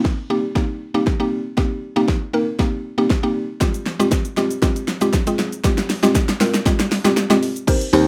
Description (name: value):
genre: dance-pop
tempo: 118 BPM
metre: 4/4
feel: straight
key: unclear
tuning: A4 = 440 Hz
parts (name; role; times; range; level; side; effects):
- mallet-like synth pluck; accompaniment; 0.0-8.1 s; Ab3 to C5; -22 LUFS; equal; chorus, sidechain pumping
- pop drum kit; drums; 0.0-8.1 s; crash cymbal, hi-hat, kick drum, shaker, snare drum; -22 LUFS; equal; none
- slap bass; bass; 7.9-8.1 s; Eb2; -16 LUFS; equal; sidechain pumping
room: moderate studio reverb, RT60 0.5 s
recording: rough home demo mix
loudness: -19 LUFS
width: mono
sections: 0.0-7.7 A section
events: build-up 0.0-7.7; drum fill 0.0-7.7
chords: 0.0 Eb6; 3.6 Fmadd9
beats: 0.05 0.56 1.07 | 1.58 2.08 2.59 3.10 | 3.61 4.12 4.63 5.13 | 5.64 6.15 6.66 7.17 | 7.68